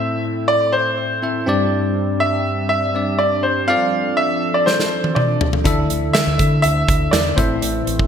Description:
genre	1980s-style pop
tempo	122 BPM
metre	4/4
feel	straight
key	unclear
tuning	A4 = 441 Hz
part	clear baby grand piano	melody	0.0-7.6 s	C5 to F5	-19 LUFS	equal	digital delay
part	bell-like tine electric piano	accompaniment	0.0-8.1 s	G2 to E5	-21 LUFS	left 2 dB	medium stereo tremolo
part	phased analog pad	sustained chords	0.0-8.1 s	D3 to A4	-27 LUFS	right 1 dB	phaser, chorus
part	big rock drum kit	drums	4.7-8.1 s	hi-hat, kick drum, snare drum, toms	-19 LUFS	right 1 dB	gated reverb
part	fingered electric bass with an envelope filter	bass	5.7-8.1 s	A1 to D3	-22 LUFS	equal	none
room	wet lush hall reverb, RT60 1.8 s, small room ambience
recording	bright 1980s-style digital production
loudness	-15 LUFS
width	side -8 dB against mid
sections	0.0-8.1 A section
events	drum fill 4.7-5.7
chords	0.0 Am; 1.5 Gsus4; 3.7 F6; 5.7 Dsus2; 7.4 Am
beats	0.25 0.74 1.23 | 1.72 2.21 2.71 3.20 | 3.69 4.18 4.67 5.16 | 5.66 6.15 6.64 7.13 | 7.62

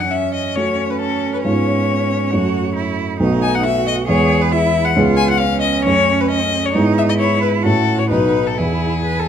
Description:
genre	quick classical-period movement for piano trio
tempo	135 BPM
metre	4/4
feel	rubato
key	E major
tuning	A4 = 440 Hz
part	clear violin	melody	0.0-9.3 s	G#4 to G#5	-19 LUFS	left 8 dB	none
part	clear cello	second line	0.0-9.3 s	C#4 to B4	-22 LUFS	right 8 dB	none
part	dark grand piano	accompaniment	0.0-9.3 s	B1 to A4	-17 LUFS	right 1 dB	none
room	moderate recital hall reverb, RT60 1.4 s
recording	close, detailed microphones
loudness	-14 LUFS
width	side -8 dB against mid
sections	0.0-9.3 A section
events	none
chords	0.0 F#m; 1.4 C#7/G#; 2.3 F#m; 3.2 B7; 4.1 E; 5.0 C#7; 5.8 F#m; 6.7 E/G#; 7.6 F#m7/A; 8.1 B; 8.6 E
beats	0.11 0.55 1.00 | 1.44 1.88 2.31 2.75 | 3.19 3.64 4.08 4.52 | 4.95 5.40 5.85 6.29 | 6.74 7.19 7.64 8.10 | 8.58 9.06

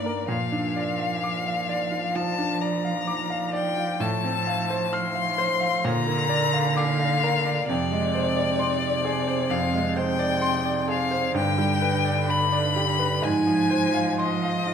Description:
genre	classical, slow romantic movement for piano trio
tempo	65 BPM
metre	4/4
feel	rubato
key	unclear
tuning	A4 = 442 Hz
part	rich violin	melody	0.0-14.7 s	D5 to C6	-26 LUFS	left 7 dB	none
part	rich cello	second line	0.0-14.7 s	C3 to Bb3	-29 LUFS	right 5 dB	none
part	bright grand piano	accompaniment	0.0-14.7 s	F2 to F6	-25 LUFS	right 1 dB	none
room	wet recital hall reverb, RT60 1.6 s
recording	minimal, uncompressed stereo recording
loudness	-22 LUFS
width	side -7 dB against mid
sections	0.0-14.7 A section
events	none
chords	0.3 Bb; 4.0 F/A; 5.9 Bb; 7.7 Dm7b5/F; 11.4 G; 13.2 Fm/Ab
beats	| 0.29 1.23 2.15 3.07 | 4.01 4.94 5.85 6.77 | 7.69 8.59 9.52 10.43 | 11.36 12.30 13.24 14.20

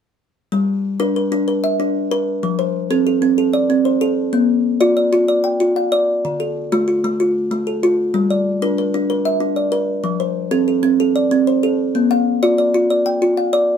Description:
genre	southern african traditional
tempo	126 BPM (dotted quarters)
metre	12/8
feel	straight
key	G equiheptatonic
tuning	A4 = 443 Hz
part	kalimba	arpeggios	0.5-13.8 s	D3 to G5	-15 LUFS	equal	none
room	wet small room reverb, RT60 0.6 s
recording	band playing live in one room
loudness	-15 LUFS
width	side -7 dB against mid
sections	0.5-13.8 A section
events	none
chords	0.5 Gm; 2.4 F; 4.3 Bb; 6.2 Dm; 8.1 Gm; 10.0 F; 11.9 Bb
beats	| 0.52 1.00 1.47 1.95 | 2.43 2.90 3.38 3.85 | 4.33 4.81 5.29 5.76 | 6.24 6.71 7.19 7.67 | 8.14 8.62 9.10 9.57 | 10.05 10.52 10.99 11.47 | 11.94 12.41 12.89 13.36

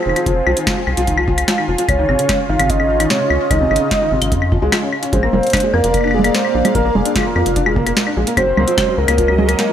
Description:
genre	IDM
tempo	148 BPM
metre	4/4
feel	straight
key	unclear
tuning	A4 = 445 Hz
part	warbly nostalgic lead	melody	0.0-9.7 s	F4 to F5	-19 LUFS	right 1 dB	chorus, tape echo
part	phased analog pad	sustained chords	0.0-9.7 s	Bb2 to F5	-22 LUFS	equal	phaser, chorus
part	booming analog drum machine	drums	0.0-9.7 s	claves, congas, hi-hat, snare drum	-19 LUFS	equal	none
part	felt-muted upright piano	arpeggios	0.1-9.7 s	C3 to D4	-21 LUFS	left 2 dB	vintage 12-bit sampler grit, tape echo
part	rubbery square bass	bass	0.1-9.6 s	F1 to F2	-19 LUFS	equal	none
part	electronic kick drum	drums	0.3-9.3 s	none	-22 LUFS	equal	none
room	light reverb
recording	none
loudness	-13 LUFS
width	side -9 dB against mid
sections	0.0-9.7 A section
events	none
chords	0.0 Fm; 1.9 Dbadd9; 5.1 Bb; 8.4 Gb6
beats	| 0.26 0.67 1.07 1.48 | 1.89 2.29 2.70 3.10 | 3.51 3.91 4.32 4.72 | 5.13 5.53 5.94 6.34 | 6.75 7.16 7.56 7.97 | 8.37 8.78 9.18 9.59

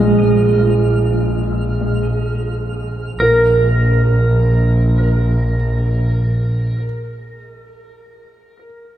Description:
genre	ambient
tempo	free time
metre	none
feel	none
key	unclear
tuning	A4 = 440 Hz
part	pedal steel guitar	melody	0.0-6.8 s	Bb4 to Eb5	-24 LUFS	right 1 dB	tape echo
part	felt-muted upright piano	arpeggios	0.0-9.0 s	F3 to F6	-18 LUFS	right 1 dB	tape echo
part	rich studio double bass section	bass	0.0-6.8 s	Bb1	-16 LUFS	equal	none
part	twinkling granular texture	texture	0.0-3.2 s	F6	-36 LUFS	right 1 dB	built-in reverb
room	wet cathedral reverb, RT60 5.0 s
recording	dark, warm production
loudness	-13 LUFS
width	side -12 dB against mid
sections	0.0-3.2 A section; 3.2-8.0 B section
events	none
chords	0.0 Abadd9/Bb; 3.2 Bb5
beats	free time

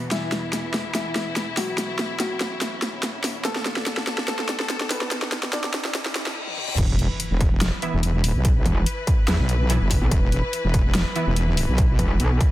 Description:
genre	heavy wobble dubstep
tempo	144 BPM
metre	4/4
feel	half-time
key	unclear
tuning	A4 = 440 Hz
part	felt-muted upright piano	melody	0.0-6.4 s	E3 to D5	-32 LUFS	left 1 dB	low-pass filter, dub echo
part	rich studio string section	sustained chords	0.0-12.5 s	E2 to B4	-32 LUFS	left 3 dB	sidechain pumping
part	riser, reverse cymbal and impact	sound effects	0.5-8.4 s	none	-35 LUFS	equal	none
part	dubstep drum kit	drums	0.1-12.5 s	crash cymbal, hi-hat, snare drum, toms	-26 LUFS	equal	studio reverb
part	wobble bass	bass	6.8-12.0 s	E1 to B1	-21 LUFS	equal	chorus, overdrive
part	electronic kick drum	drums	6.8-12.5 s	none	-21 LUFS	equal	distortion, studio reverb
part	orchestra-hit-like synth stab	stabs	7.8-11.4 s	E3 to E4	-30 LUFS	right 2 dB	built-in reverb, dub echo
part	metallic wobble bass	bass	8.7-12.4 s	E1 to E2	-20 LUFS	equal	distortion, chorus, overdrive
room	light reverb, digital ambience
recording	dense, heavily limited modern master, high-pass filter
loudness	-20 LUFS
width	side -15 dB against mid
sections	0.0-6.8 A section; 6.8-12.5 B section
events	build-up 0.0-6.8; drum fill 0.0-6.4, 6.5-6.8; filter sweep on felt piano 0.0-6.8; reverse cymbal 5.9-6.8; drop 6.8-12.5; impact 6.8-8.4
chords	0.0 E5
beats	| 0.11 0.53 0.95 1.36 | 1.78 2.20 2.61 3.03 | 3.45 3.86 4.28 4.70 | 5.11 5.53 5.95 6.36 | 6.78 7.20 7.61 8.03 | 8.45 8.86 9.28 9.70 | 10.11 10.53 10.95 11.36 | 11.78 12.20

